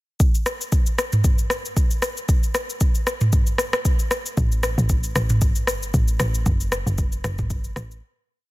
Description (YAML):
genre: amapiano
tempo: 115 BPM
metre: 4/4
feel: swing 55% on 16ths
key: unclear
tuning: A4 = 441 Hz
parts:
  - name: afro-pop drum kit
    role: drums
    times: 0.2-8.0 s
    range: kick drum, rim click, shaker, toms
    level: -20 LUFS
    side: equal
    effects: soft clipping on snare
  - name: woody log drum bass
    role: bass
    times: 4.4-8.0 s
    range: F#1 to A1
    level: -24 LUFS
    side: equal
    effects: none
room: little or no reverb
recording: dense, heavily limited modern master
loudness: -19 LUFS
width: side -19 dB against mid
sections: 0.2-8.5 groove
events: fade-out 6.5-8.5; break 8.0-8.5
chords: none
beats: | 0.20 0.72 1.24 1.76 | 2.29 2.81 3.33 3.85 | 4.37 4.90 5.42 5.94 | 6.46 6.98 7.50